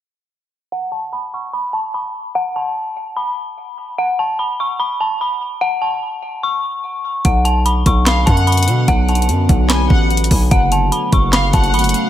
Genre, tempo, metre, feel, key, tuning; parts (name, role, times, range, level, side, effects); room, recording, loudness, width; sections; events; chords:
hip hop, trap; 147 BPM; 4/4; half-time; A4 = 438 Hz
dark detuned synth bell; melody; 0.7-11.9 s; F#5 to C#6; -19 LUFS; left 1 dB; chorus, low-pass filter, tape echo
deep dark ambient pad; sustained chords; 8.2-12.1 s; C#3 to F#4; -23 LUFS; right 1 dB; chorus, built-in reverb
distorted 808-style bass; bass; 7.2-11.9 s; F#1 to B2; -15 LUFS; equal; distortion
trap drum kit; drums; 7.2-12.0 s; handclaps, hi-hat, kick drum, snare drum; -16 LUFS; equal
warm studio violin section; second line; 8.1-12.1 s; E#5 to G#5; -22 LUFS; left 2 dB; tape echo
light reverb; echo-heavy mix; -14 LUFS; side -12 dB against mid
0.7-7.2 A section; 7.2-12.1 B section
filter sweep on synth bell 0.7-7.2
0.7 N.C.; 7.2 Bm; 10.5 F#m